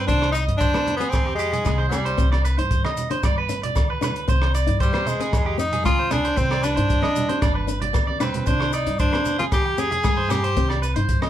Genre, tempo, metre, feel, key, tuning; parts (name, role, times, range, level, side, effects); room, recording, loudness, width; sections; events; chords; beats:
highlife guitar band; 114 BPM; 4/4; straight; C harmonic minor; A4 = 440 Hz
edgy tenor saxophone; melody; 0.0-10.8 s; G3 to Ab4; -24 LUFS; left 1 dB
nylon-string guitar; accompaniment; 0.0-11.3 s; Ab3 to Eb4; -31 LUFS; left 5 dB
electric guitar at the edge of break-up; arpeggios; 0.0-11.3 s; G4 to Eb5; -26 LUFS; right 3 dB
upright bass; bass; 0.0-11.2 s; G1 to G2; -25 LUFS; equal
compact cocktail drum kit; drums; 0.1-11.3 s; hi-hat, kick drum, rim click; -24 LUFS; equal
maracas; percussion; 0.1-11.2 s; -41 LUFS; left 6 dB
agogo bells; percussion; 0.2-11.3 s; -35 LUFS; right 2 dB
congas; percussion; 0.7-11.3 s; -31 LUFS; right 2 dB
light reverb; band playing live in one room; -19 LUFS; side -11 dB against mid
0.1-11.3 A section
drum fill 7.9-8.5
0.1 Cm; 1.1 Fmadd9; 2.2 Cmadd9; 3.2 G; 4.3 Cmadd9; 5.3 Fm; 6.4 Cmadd9; 7.4 G; 8.5 Cmadd9; 9.5 Fmadd9; 10.6 Cmadd9
| 0.08 0.61 1.13 1.65 | 2.18 2.70 3.23 3.75 | 4.28 4.80 5.33 5.85 | 6.37 6.90 7.42 7.95 | 8.47 8.99 9.52 10.04 | 10.57 11.09